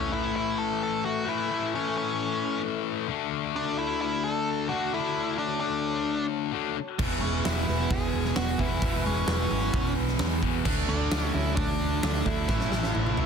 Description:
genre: hard rock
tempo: 131 BPM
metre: 4/4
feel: straight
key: A major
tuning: A4 = 441 Hz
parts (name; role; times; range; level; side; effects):
- nasal lead guitar with a parked wah; melody; 0.0-13.3 s; C#4 to A4; -31 LUFS; right 1 dB; overdrive, slapback echo
- airy breathy pad; sustained chords; 0.0-13.3 s; E4 to C#6; -40 LUFS; right 1 dB; chorus
- high-gain distorted guitar; riff; 0.0-13.3 s; E2 to D4; -30 LUFS; left 13 dB; distortion
- overdriven electric guitar; riff; 7.0-13.3 s; E2 to D4; -32 LUFS; right 15 dB; none
- hollow-body short-scale fingered electric bass; bass; 7.0-13.3 s; E1 to E2; -30 LUFS; right 1 dB; none
- huge arena drum kit; drums; 7.0-13.3 s; crash cymbal, hi-hat, kick drum, snare drum, toms; -30 LUFS; right 1 dB; none
- steel pan; second line; 7.2-13.3 s; G#3 to E4; -38 LUFS; right 6 dB; none
room: light reverb, small room ambience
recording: dense, heavily limited modern master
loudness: -25 LUFS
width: side -6 dB against mid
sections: 0.0-13.3 A section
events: drum fill 12.5-13.3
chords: 0.0 A; 3.1 D; 7.0 E; 10.7 D; 12.5 A

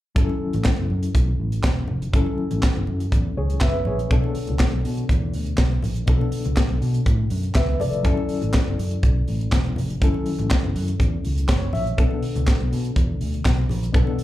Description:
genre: disco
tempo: 122 BPM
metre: 4/4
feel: straight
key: F# minor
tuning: A4 = 440 Hz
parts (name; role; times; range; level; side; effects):
- reed electric piano; accompaniment; 0.2-14.2 s; B2 to E5; -27 LUFS; left 3 dB; fast tremolo, slapback echo
- fingered electric bass; bass; 0.2-14.0 s; E1 to B2; -24 LUFS; equal; none
- tight funk drum kit; drums; 0.2-14.2 s; handclaps, hi-hat, kick drum, snare drum; -21 LUFS; equal; none
- congas; percussion; 0.2-14.2 s; none; -32 LUFS; left 4 dB; slapback echo
room: little or no reverb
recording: live gig heard through the venue's PA, club reverb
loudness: -19 LUFS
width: side -15 dB against mid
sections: 0.2-14.2 A section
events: reed electric piano fill 11.2-12.0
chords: 0.2 F#m7; 4.1 Bm7; 8.0 F#m7; 12.0 Bm7

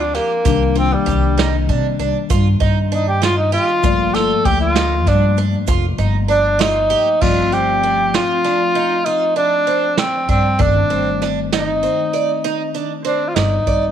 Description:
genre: progressive instrumental, band music in an uneven meter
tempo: 195 BPM (eighths)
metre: 11/8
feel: straight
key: unclear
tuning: A4 = 440 Hz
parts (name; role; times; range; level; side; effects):
- warm tenor saxophone; melody; 0.0-13.9 s; G3 to A4; -17 LUFS; equal; none
- tine electric piano; accompaniment; 0.0-13.9 s; Eb3 to D5; -24 LUFS; left 12 dB; phaser
- upright bass; bass; 0.0-13.9 s; F1 to C3; -19 LUFS; equal; none
- picked twelve-string acoustic guitar; arpeggios; 0.1-13.8 s; C4 to D5; -23 LUFS; right 9 dB; wide subtle chorus
- vintage brush drum kit; drums; 0.1-13.8 s; crash cymbal, hi-hat, kick drum, snare drum; -21 LUFS; right 2 dB; none
- egg shaker; percussion; 0.5-6.1 s; none; -36 LUFS; right 14 dB; none
room: light reverb, small room ambience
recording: 1960s-style stereo with parts hard left and right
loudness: -14 LUFS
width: side -9 dB against mid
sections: 0.0-7.2 A section; 7.2-13.9 B section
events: tenor saxophone solo 0.0-7.2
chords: 0.5 Cm7; 3.8 Gm7; 7.2 Dm7/G; 10.6 Adim/G

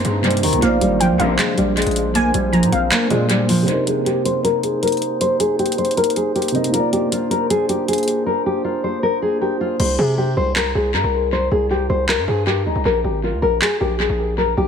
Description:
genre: hip hop, trap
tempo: 157 BPM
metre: 4/4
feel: half-time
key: C minor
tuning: A4 = 440 Hz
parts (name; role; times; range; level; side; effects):
- glassy wavetable pluck; second line; 0.0-3.6 s; F5 to C6; -25 LUFS; equal; chorus, tape echo
- dark concert grand piano; accompaniment; 0.0-9.8 s; C3 to D5; -24 LUFS; right 2 dB; low-pass filter, tape echo
- glass harmonica; sustained chords; 0.0-9.8 s; Bb3 to C5; -26 LUFS; right 1 dB; low-pass filter
- distorted 808-style bass; bass; 0.0-3.7, 9.8-14.7 s; Ab1 to C3; -22 LUFS; equal; distortion
- trap drum kit; drums; 0.0-13.7 s; crash cymbal, handclaps, hi-hat; -24 LUFS; equal; tape echo
- nylon-string guitar; melody; 0.1-14.7 s; Eb3 to C5; -18 LUFS; left 1 dB; low-pass filter, tape echo
- warm studio string section; stabs; 1.2-1.6 s; C3 to F3; -24 LUFS; left 5 dB; none
room: light reverb, small room ambience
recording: echo-heavy mix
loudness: -16 LUFS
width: side -7 dB against mid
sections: 0.0-3.7 A section; 3.7-9.8 B section; 9.8-14.7 C section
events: filter sweep 3.7-9.8; hi-hats muted 9.8-14.7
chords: 0.0 Cm7; 0.6 Bbadd9; 3.7 Cm7; 6.7 Bbadd9; 9.8 C5; 12.9 N.C.

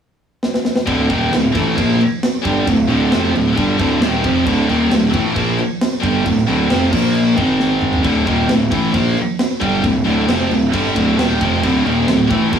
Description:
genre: heavy metal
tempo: 134 BPM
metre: 4/4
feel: straight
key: D phrygian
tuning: A4 = 440 Hz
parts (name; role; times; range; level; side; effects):
- tight metal drum kit; drums; 0.4-12.6 s; crash cymbal, kick drum, snare drum, toms; -20 LUFS; equal; none
- heavy high-gain guitar; riff; 0.9-12.6 s; D2 to Bb3; -20 LUFS; left 6 dB; distortion
- heavy high-gain guitar; riff; 0.9-12.6 s; D2 to Bb3; -19 LUFS; right 5 dB; distortion
- thick fuzz guitar; riff; 0.9-12.6 s; D2 to Bb3; -23 LUFS; equal; distortion
- fuzz picked electric bass; bass; 0.9-12.6 s; D1 to Bb1; -18 LUFS; equal; overdrive
room: moderate booth ambience, RT60 0.2 s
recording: rough rehearsal-room recording, warm saturation, small room ambience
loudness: -13 LUFS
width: side -8 dB against mid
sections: 0.9-12.6 A section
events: drum fill 0.4-0.9, 7.6-8.0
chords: 0.0 N.C.; 0.9 Dm; 6.9 Bb5; 7.4 G#5; 8.0 Dm

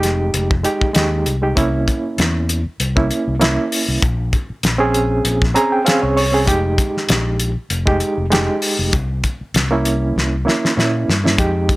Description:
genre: straight-eighth soul blues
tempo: 98 BPM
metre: 4/4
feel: swing 55% on 16ths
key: unclear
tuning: A4 = 440 Hz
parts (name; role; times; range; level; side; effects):
- overdriven reed electric piano; accompaniment; 0.0-11.8 s; Ab3 to Bb5; -18 LUFS; right 2 dB; fast tremolo
- fingered electric bass; bass; 0.0-11.7 s; F1 to Bb2; -20 LUFS; left 1 dB; none
- cloth-damped thuddy drum kit; drums; 0.0-11.8 s; hi-hat, kick drum, snare drum; -18 LUFS; left 1 dB; none
room: light reverb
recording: none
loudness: -15 LUFS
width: side -20 dB against mid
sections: 0.0-11.4 A section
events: reed electric piano fill 5.3-6.5; drum fill 10.2-11.4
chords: 0.0 Fm9; 1.6 C7b9; 4.0 Bbm9; 6.5 Fm9; 8.9 C7b9

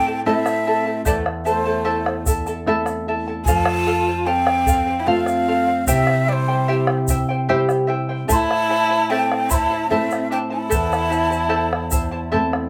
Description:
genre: andean folk, Andean ensemble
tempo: 74 BPM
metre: 3/4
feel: straight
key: A minor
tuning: A4 = 440 Hz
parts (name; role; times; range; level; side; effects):
- breathy mellow quena; melody; 0.0-12.3 s; C5 to C6; -24 LUFS; equal; none
- warm viola; second line; 0.0-12.3 s; G3 to F4; -27 LUFS; equal; none
- charango; accompaniment; 0.0-12.7 s; E4 to A5; -25 LUFS; equal; none
- nylon-string guitar; accompaniment; 0.0-12.7 s; E2 to F4; -27 LUFS; equal; none
- bombo; percussion; 0.5-12.7 s; none; -25 LUFS; equal; none
- egg shaker; percussion; 0.5-12.1 s; none; -31 LUFS; equal; none
room: moderate studio ambience, RT60 0.5 s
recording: band playing live in one room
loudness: -20 LUFS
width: mono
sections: 0.0-12.7 A section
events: none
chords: 0.0 Am; 3.5 F; 5.9 C; 8.3 Am

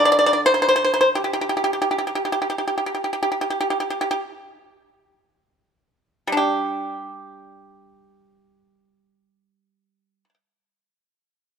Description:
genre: chinese traditional, Chinese solo plucked strings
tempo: 43-69 BPM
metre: 4/4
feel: rubato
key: unclear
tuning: A4 = 440 Hz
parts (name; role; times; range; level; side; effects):
- pipa; solo; 0.0-10.3 s; D3 to D5; -19 LUFS; equal; none
room: light reverb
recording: close, detailed microphones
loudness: -19 LUFS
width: side -7 dB against mid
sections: 0.0-6.4 A section; 6.4-11.6 B section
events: slowing down 0.0-6.4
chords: none

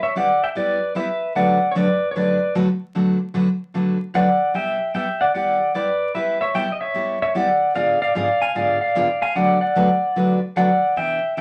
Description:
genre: country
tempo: 150 BPM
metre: 4/4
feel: swing 65% on 8ths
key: D major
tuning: A4 = 440 Hz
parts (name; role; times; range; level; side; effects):
- pedal steel guitar; melody; 0.0-11.4 s; B4 to G#5; -21 LUFS; equal; none
- picked steel-string acoustic guitar; accompaniment; 0.2-11.4 s; G#2 to B4; -24 LUFS; equal; none
room: wet studio ambience, RT60 0.5 s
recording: vinyl crackle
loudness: -20 LUFS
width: mono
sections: 0.0-11.4 A section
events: none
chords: 0.0 G6; 1.4 D6; 4.5 G6; 7.8 G#dim7; 9.4 D6

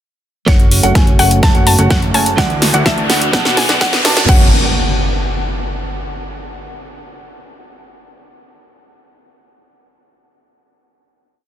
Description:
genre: EDM, festival progressive house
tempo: 126 BPM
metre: 4/4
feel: straight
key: F# minor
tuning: A4 = 443 Hz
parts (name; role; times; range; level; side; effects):
- mallet-like synth pluck; melody; 0.5-4.5 s; C#5 to A5; -22 LUFS; left 2 dB; chorus, cassette tape, digital delay
- direct-recorded clean electric guitar; accompaniment; 0.5-4.5 s; A3 to D5; -24 LUFS; right 5 dB; none
- lush unison pad; sustained chords; 0.5-4.5 s; C#3 to F#4; -26 LUFS; right 1 dB; none
- dark grand piano; arpeggios; 0.5-4.5 s; F#5 to A5; -23 LUFS; right 1 dB; sidechain pumping, digital delay
- supersaw stab; riff; 0.5-4.5 s; A3 to A5; -23 LUFS; right 1 dB; cassette tape, sidechain pumping, low-pass filter, digital delay
- fat analog bass; bass; 0.5-4.5 s; F#1 to D2; -17 LUFS; equal; sidechain pumping
- big-room dance drum kit; drums; 0.5-4.4 s; crash cymbal, hi-hat, snare drum; -18 LUFS; equal; none
- electronic kick drum; drums; 0.5-4.4 s; none; -13 LUFS; equal; none
- riser and impact; sound effects; 1.8-6.2 s; none; -20 LUFS; equal; none
room: light reverb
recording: dense, heavily limited modern master, high-pass filter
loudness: -10 LUFS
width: side -11 dB against mid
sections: 0.5-4.3 build; 4.3-6.2 final chord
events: build-up 0.5-4.3; drum fill 0.5-4.3; filter sweep on supersaw synth 0.5-4.3; filter sweep 0.5-4.3; riser 1.8-4.3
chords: 0.5 F#m; 2.4 Dadd9; 3.3 Bm; 4.3 F#

